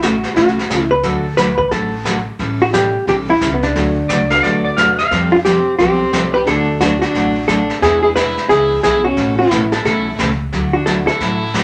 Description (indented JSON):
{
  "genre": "country, western swing",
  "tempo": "177 BPM",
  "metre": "4/4",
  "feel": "swing 62% on 8ths",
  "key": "D major",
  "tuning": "A4 = 440 Hz",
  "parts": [
    { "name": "hollow-body jazz guitar", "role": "melody", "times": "0.0-11.6 s", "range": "B3 to B4", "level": "-18 LUFS", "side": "equal", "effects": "none" },
    { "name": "picked steel-string acoustic guitar", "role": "accompaniment", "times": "0.0-11.6 s", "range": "B2 to A4", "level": "-23 LUFS", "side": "equal", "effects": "none" },
    { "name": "upright bass", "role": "bass", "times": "0.0-11.6 s", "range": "A1 to F2", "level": "-27 LUFS", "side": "equal", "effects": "none" },
    { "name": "jazz brush drum kit", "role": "drums", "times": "0.0-11.6 s", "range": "brushed snare drum, hi-hat, kick drum, snare drum", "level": "-25 LUFS", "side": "equal", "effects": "none" },
    { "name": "dark upright piano", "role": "accompaniment", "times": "1.0-8.8, 10.9-11.1 s", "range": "F#3 to B4", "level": "-28 LUFS", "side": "equal", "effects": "none" },
    { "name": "clean lap steel guitar", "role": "second line", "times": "4.1-5.2 s", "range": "D5 to F5", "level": "-17 LUFS", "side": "equal", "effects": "none" },
    { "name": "dark fiddle", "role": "second line", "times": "5.3-11.6 s", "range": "B3 to G4", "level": "-23 LUFS", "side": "equal", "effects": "none" }
  ],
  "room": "moderate club reverb, RT60 0.7 s",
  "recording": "none",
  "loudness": "-15 LUFS",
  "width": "mono",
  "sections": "0.0-11.6 A section",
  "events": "none",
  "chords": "0.0 A; 1.0 D; 2.4 A7; 3.8 D; 5.1 Fadd9; 6.5 D; 7.8 E7; 9.2 Aadd9; 10.5 Dadd9"
}